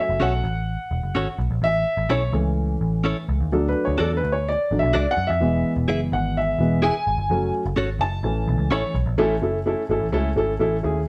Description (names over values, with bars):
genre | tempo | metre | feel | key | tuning
soul | 127 BPM | 4/4 | straight | A major | A4 = 438 Hz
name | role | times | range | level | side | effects
dark upright piano | accompaniment | 0.0-11.0 s | E3 to A5 | -25 LUFS | equal | none
vintage muted picked electric bass | bass | 0.1-11.0 s | E1 to F#2 | -27 LUFS | equal | none
direct-recorded clean electric guitar | stabs | 0.2-8.8 s | C#4 to E5 | -28 LUFS | equal | none
room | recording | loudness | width
moderate studio reverb, RT60 0.8 s | band playing live in one room | -22 LUFS | mono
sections
0.0-9.2 A section; 9.2-11.1 B section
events
upright piano solo 0.0-9.2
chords
0.0 F#m; 1.6 A; 3.5 D; 5.4 E; 7.3 F#m; 8.2 A